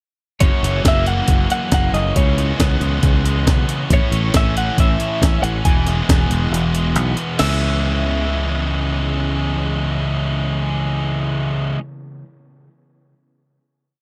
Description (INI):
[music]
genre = indie rock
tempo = 137 BPM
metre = 4/4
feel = straight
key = C# minor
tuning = A4 = 440 Hz
[part]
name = twelve-string electric guitar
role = melody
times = 0.4-11.7 s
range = C#5 to G#5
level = -26 LUFS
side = equal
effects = subtle chorus
[part]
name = soft string machine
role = sustained chords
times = 1.2-11.7 s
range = E3 to D#5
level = -36 LUFS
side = equal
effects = none
[part]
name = high-gain distorted guitar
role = riff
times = 0.4-11.8 s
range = F#2 to C#4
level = -27 LUFS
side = equal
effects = distortion
[part]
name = sludgy distorted guitar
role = riff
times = 0.4-11.8 s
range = E2 to F#4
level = -26 LUFS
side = equal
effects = overdrive, subtle chorus, digital delay
[part]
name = fingered electric bass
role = bass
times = 0.4-11.7 s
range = E1 to C#2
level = -23 LUFS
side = equal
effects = none
[part]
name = breakbeat sampler-style drum kit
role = drums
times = 0.4-7.5 s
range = crash cymbal, hi-hat, kick drum, snare drum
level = -19 LUFS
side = equal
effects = none
[sound]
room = little or no reverb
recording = none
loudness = -18 LUFS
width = mono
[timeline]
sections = 0.4-7.4 pre-chorus; 7.4-10.9 final chord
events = break 6.5-7.4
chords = 0.4 F#7; 2.2 C#m7; 3.9 A; 5.6 Emaj7; 7.4 C#m7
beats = | 0.41 0.85 1.28 1.72 | 2.15 2.59 3.03 3.46 | 3.90 4.34 4.77 5.21 | 5.65 6.08 6.52 6.96 | 7.40 7.83 8.27 8.71 | 9.15 9.59 10.02 10.46